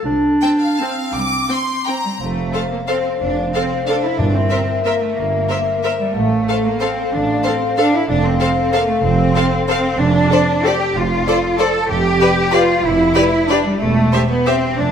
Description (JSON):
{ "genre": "classical", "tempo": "157-205 BPM", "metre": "3/4", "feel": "rubato", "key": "F major, C major from 10.0 s", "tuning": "A4 = 440 Hz", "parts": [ { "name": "warm clarinet", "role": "second line", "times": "0.0-2.0 s", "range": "C4 to D4", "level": "-18 LUFS", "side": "equal", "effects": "none" }, { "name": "clear symphonic double bass section", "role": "bass", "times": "0.0-14.9 s", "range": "E1 to C2", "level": "-20 LUFS", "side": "right 3 dB", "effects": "none" }, { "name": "rich studio cello section", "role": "bass", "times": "0.1-14.9 s", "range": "C2 to A4", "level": "-18 LUFS", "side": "right 1 dB", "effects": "none" }, { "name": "clear studio violin section", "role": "melody", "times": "0.4-14.5 s", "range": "D5 to A5", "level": "-27 LUFS", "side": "left 4 dB", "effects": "none" }, { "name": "clear studio violin section", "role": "second line", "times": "0.4-14.5 s", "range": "B4 to D6", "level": "-25 LUFS", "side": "left 3 dB", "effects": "none" }, { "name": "clear studio viola section", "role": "accompaniment", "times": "0.4-14.5 s", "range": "C4 to Bb4", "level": "-24 LUFS", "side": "right 1 dB", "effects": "none" }, { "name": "dark French horn section", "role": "sustained chords", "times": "2.2-14.6 s", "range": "A4 to F5", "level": "-22 LUFS", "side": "left 4 dB", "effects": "none" }, { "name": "timpani", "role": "percussion", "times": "4.2-4.6 s", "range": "G2", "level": "-22 LUFS", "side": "equal", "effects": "none" } ], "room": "moderate scoring stage reverb, RT60 2.1 s", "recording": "none", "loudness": "-14 LUFS", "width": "side -8 dB against mid", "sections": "0.0-2.2 A section; 2.2-14.9 B section", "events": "none", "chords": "0.1 F5/C; 1.1 C5; 2.2 F; 4.2 C7/G; 6.2 F/A; 8.1 F; 10.0 Dm7/F; 11.9 G7/F; 13.8 C/E" }